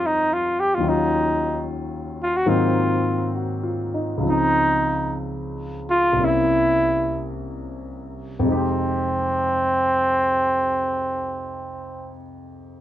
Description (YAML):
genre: jazz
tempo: 48-74 BPM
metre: 4/4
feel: swing 67% on 8ths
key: F minor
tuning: A4 = 441 Hz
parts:
  - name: clear flugelhorn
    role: melody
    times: 0.0-12.2 s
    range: C4 to G4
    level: -20 LUFS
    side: equal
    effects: none
  - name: warm grand piano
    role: accompaniment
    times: 0.0-12.8 s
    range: C2 to G4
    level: -24 LUFS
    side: left 1 dB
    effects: none
room: light reverb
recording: close, detailed microphones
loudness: -19 LUFS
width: side -12 dB against mid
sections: 0.0-4.3 A section; 4.3-8.5 B section; 8.5-12.8 C section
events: slowing down 0.8-8.5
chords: 0.0 Fm9; 0.8 Ebm7; 2.5 Ab7; 4.3 Dbmaj9; 6.2 C7b9; 8.5 Fm9